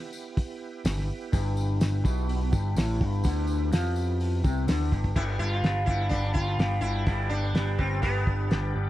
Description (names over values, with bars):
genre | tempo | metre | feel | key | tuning
psychedelic rock | 125 BPM | 4/4 | straight | G mixolydian | A4 = 445 Hz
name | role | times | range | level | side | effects
overdriven tonewheel organ | sustained chords | 0.0-8.9 s | B3 to D5 | -41 LUFS | right 7 dB | slow rotary speaker, chorus vibrato
tambourine | percussion | 0.1-4.8 s | none | -47 LUFS | left 6 dB | none
cloth-damped thuddy drum kit | drums | 0.4-8.6 s | crash cymbal, hi-hat, kick drum, snare drum | -27 LUFS | equal | none
electric guitar through a small old amp | riff | 0.8-8.9 s | G2 to G4 | -32 LUFS | left 3 dB | phaser
overdriven picked electric bass | bass | 0.9-8.9 s | G1 to F2 | -27 LUFS | equal | none
sitar | melody | 5.2-8.7 s | B3 to F4 | -31 LUFS | equal | slapback echo
room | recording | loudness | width
little or no reverb | dry, close 1970s-style studio recording | -24 LUFS | side -15 dB against mid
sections
0.0-5.2 A section; 5.2-8.9 B section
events
drum fill 4.9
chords
0.0 G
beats
0.37 0.84 | 1.32 1.80 2.28 2.76 | 3.24 3.72 4.20 4.68 | 5.16 5.63 6.12 6.59 | 7.08 7.55 8.04 8.52